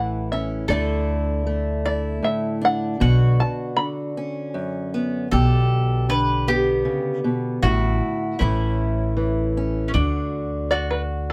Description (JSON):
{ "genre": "acoustic folk duo or small band", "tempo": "78 BPM", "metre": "3/4", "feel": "straight", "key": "D major", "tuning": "A4 = 437 Hz", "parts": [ { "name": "open-back banjo", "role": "melody", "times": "0.0-4.9, 10.7-11.3 s", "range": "B4 to B5", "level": "-26 LUFS", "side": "equal", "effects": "none" }, { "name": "mandolin", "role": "second line", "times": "0.0-11.3 s", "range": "C#4 to B4", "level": "-29 LUFS", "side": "equal", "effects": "none" }, { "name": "fingerpicked acoustic archtop guitar", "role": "accompaniment", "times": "0.0-11.3 s", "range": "F#2 to G4", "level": "-27 LUFS", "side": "equal", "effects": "none" }, { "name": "upright bass", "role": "bass", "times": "0.0-11.3 s", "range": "A1 to D2", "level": "-24 LUFS", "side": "equal", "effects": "none" } ], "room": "little or no reverb", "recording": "close, detailed microphones", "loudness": "-22 LUFS", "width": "mono", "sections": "0.0-10.0 A section; 10.0-11.3 B section", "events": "five-string banjo solo 10.0-11.3", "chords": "0.0 Aadd9; 0.7 Dsus2; 3.0 Bmadd9; 5.3 Gadd9/B; 7.6 Asus4; 8.4 A; 10.0 D" }